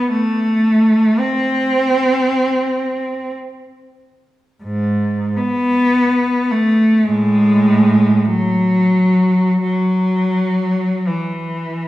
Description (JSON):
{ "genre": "classical, free, expressive piece for unaccompanied cello", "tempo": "36-56 BPM", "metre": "4/4", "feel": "rubato", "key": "E major", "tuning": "A4 = 440 Hz", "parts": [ { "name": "rich cello", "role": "solo", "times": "0.0-11.9 s", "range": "G#2 to C4", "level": "-14 LUFS", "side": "equal", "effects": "none" } ], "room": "wet recital hall reverb, RT60 1.6 s", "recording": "heard from further back in the room", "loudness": "-13 LUFS", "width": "side -16 dB against mid", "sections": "0.0-11.9 A section", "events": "none", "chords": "none", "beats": "| 0.11 1.18 2.25 3.33 | 4.62 5.96 7.06 8.26 | 9.63 11.07" }